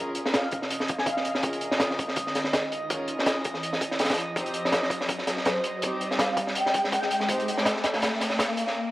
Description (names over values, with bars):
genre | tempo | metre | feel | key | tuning
drum and bass, jungle | 164 BPM | 4/4 | swing 55% on 16ths | Bb dorian | A4 = 440 Hz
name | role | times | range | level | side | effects
warm chamber string section | sustained chords | 0.0-7.6 s | C4 to C5 | -34 LUFS | equal | vintage 12-bit sampler grit, cassette tape
saturated sub bass | bass | 0.0-8.8 s | F1 to Db2 | -52 LUFS | equal | none
riser | sound effects | 0.8-8.8 s | none | -34 LUFS | equal | none
drifting glass-harmonics texture | texture | 0.0-8.8 s | Eb5 | -36 LUFS | right 1 dB | chorus, built-in reverb, cassette tape
crunchy breakbeat drum kit | drums | 0.1-8.7 s | hi-hat, kick drum, snare drum | -26 LUFS | equal | high-pass filter on kick, cassette tape, high-pass filter on hats, high-pass filter on snare, high-pass filter on room
breathy flute-like synth lead | melody | 0.3-1.4, 5.5-7.3 s | C5 to Ab5 | -31 LUFS | equal | ensemble chorus, cassette tape, dub echo
room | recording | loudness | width
wet spring reverb, RT60 2.0 s, small room reverb | home recording on cassette, vinyl crackle | -24 LUFS | side -17 dB against mid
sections
0.0-8.9 A section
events
build-up 0.0-8.9; riser 0.8-8.8; break 8.8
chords
0.0 Bbm7; 4.4 Cm